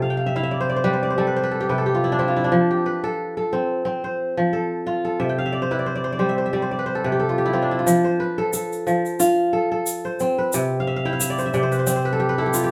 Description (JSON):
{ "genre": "west african traditional, West African string and xylophone music", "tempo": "90 BPM", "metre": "4/4", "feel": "swing 55% on 16ths", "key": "F lydian", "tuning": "A4 = 439 Hz", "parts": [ { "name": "kora", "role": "arpeggios", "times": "0.0-12.7 s", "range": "C3 to G5", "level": "-22 LUFS", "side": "equal", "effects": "none" }, { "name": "tube shaker", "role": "percussion", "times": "7.9-12.7 s", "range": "none", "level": "-30 LUFS", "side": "equal", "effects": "none" } ], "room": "wet studio reverb, RT60 0.6 s", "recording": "band playing live in one room", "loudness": "-22 LUFS", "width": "mono", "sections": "0.0-7.9 A section; 7.9-12.7 B section", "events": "kora fill 0.0-2.5, 5.2-7.9, 10.8-12.7", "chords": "0.0 C; 2.5 F; 5.2 C; 7.9 F; 10.5 C", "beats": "0.51 1.18 1.85 | 2.52 3.19 3.86 4.53 | 5.20 5.86 6.53 7.20 | 7.87 8.54 9.21 9.87 | 10.54 11.21 11.87 12.54" }